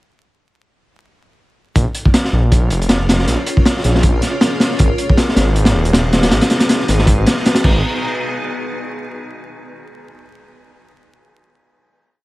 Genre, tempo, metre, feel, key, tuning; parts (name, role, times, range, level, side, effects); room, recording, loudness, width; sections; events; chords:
drum and bass, jungle; 158 BPM; 4/4; swing 55% on 16ths; G# dorian; A4 = 444 Hz
detuned saw bass; bass; 1.8-7.8 s; D#1 to A#1; -16 LUFS; equal
crunchy breakbeat drum kit; drums; 1.8-7.7 s; crash cymbal, hi-hat, kick drum, snare drum; -14 LUFS; equal
small room reverb; vinyl crackle; -12 LUFS; side -18 dB against mid
1.8-7.8 drop; 7.8-9.4 final hit
drop 1.8-7.8